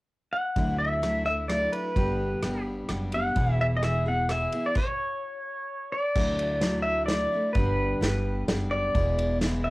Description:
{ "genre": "honky-tonk and classic country", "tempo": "129 BPM", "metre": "3/4", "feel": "straight", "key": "D major", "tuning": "A4 = 438 Hz", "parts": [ { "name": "pedal steel guitar", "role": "melody", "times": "0.3-9.7 s", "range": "B4 to F#5", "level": "-27 LUFS", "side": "equal", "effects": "cassette tape" }, { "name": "picked steel-string acoustic guitar", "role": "accompaniment", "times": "0.6-9.7 s", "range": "E2 to G#4", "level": "-30 LUFS", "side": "left 1 dB", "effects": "cassette tape" }, { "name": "upright bass", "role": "bass", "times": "0.6-9.7 s", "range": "E1 to D2", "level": "-30 LUFS", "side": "equal", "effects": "transformer saturation" }, { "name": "unplugged drum kit", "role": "drums", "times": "0.6-9.5 s", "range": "crash cymbal, kick drum, ride cymbal, rim click, snare drum", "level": "-30 LUFS", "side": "equal", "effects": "cassette tape" } ], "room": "moderate studio reverb, RT60 0.6 s", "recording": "home recording on cassette", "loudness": "-24 LUFS", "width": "side -20 dB against mid", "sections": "0.6-6.2 A section; 6.2-9.7 B section", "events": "stop 4.8-6.2", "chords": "0.0 N.C.; 0.6 Dadd9; 2.0 G; 3.4 E; 4.8 N.C.; 6.2 Dadd9; 7.6 G; 9.0 E", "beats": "0.10 | 0.56 1.03 1.50 | 1.96 2.43 2.90 | 3.36 3.83 4.30 | 4.76 5.23 5.69 | 6.16 6.62 7.09 | 7.56 8.02 8.49 | 8.95 9.42" }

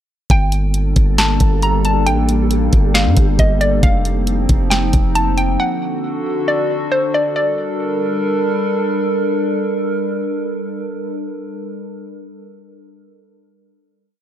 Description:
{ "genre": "hip hop, atmospheric cloud-rap", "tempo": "136 BPM", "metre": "4/4", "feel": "half-time", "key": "G minor", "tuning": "A4 = 444 Hz", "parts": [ { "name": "hollow square pluck", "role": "melody", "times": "0.3-8.6 s", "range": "C5 to Bb5", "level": "-20 LUFS", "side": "equal", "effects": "chorus, low-pass filter, tape echo" }, { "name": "warbly tape-like pad", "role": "sustained chords", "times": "0.3-11.6 s", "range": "D3 to Bb4", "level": "-20 LUFS", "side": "equal", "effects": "chorus, built-in reverb, sidechain pumping" }, { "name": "long sustained 808-style bass", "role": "bass", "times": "0.3-5.6 s", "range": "F1 to G2", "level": "-17 LUFS", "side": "equal", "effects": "none" }, { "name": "trap drum kit", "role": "drums", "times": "0.3-5.5 s", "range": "hi-hat, kick drum, snare drum", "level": "-15 LUFS", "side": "equal", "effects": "none" }, { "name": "wind-like tuned noise texture", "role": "texture", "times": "0.8-3.8 s", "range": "G3 to A4", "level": "-28 LUFS", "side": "equal", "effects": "built-in reverb" } ], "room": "digital ambience", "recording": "dry, gritty hardware recording", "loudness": "-14 LUFS", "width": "side -11 dB against mid", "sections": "0.3-7.4 verse; 7.4-10.9 final chord", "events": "none", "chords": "0.3 Gmadd9; 3.8 F7sus4; 5.6 D; 7.4 Gmadd9", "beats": "| 0.30 0.74 1.18 1.62 | 2.06 2.51 2.95 3.39 | 3.83 4.27 4.71 5.15 | 5.59 6.04 6.48 6.92 | 7.36 7.80 8.24 8.68 | 9.12 9.56 10.01 10.45" }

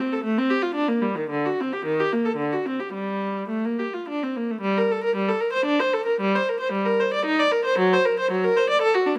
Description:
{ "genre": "classical, baroque-style suite movement for unaccompanied viola", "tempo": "106-119 BPM", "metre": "3/4", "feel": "rubato", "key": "G minor", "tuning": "A4 = 440 Hz", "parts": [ { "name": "rich viola", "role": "solo", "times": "0.0-9.2 s", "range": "D3 to D5", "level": "-23 LUFS", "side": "equal", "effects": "none" } ], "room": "light reverb", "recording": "close, detailed microphones", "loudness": "-23 LUFS", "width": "mono", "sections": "0.0-4.6 A section; 4.6-9.2 B section", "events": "none", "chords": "none", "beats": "0.25 0.77 | 1.32 1.86 2.40 | 2.95 3.52 4.08 | 4.63 5.16 5.68 | 6.22 6.76 7.29 | 7.81 8.33 8.84" }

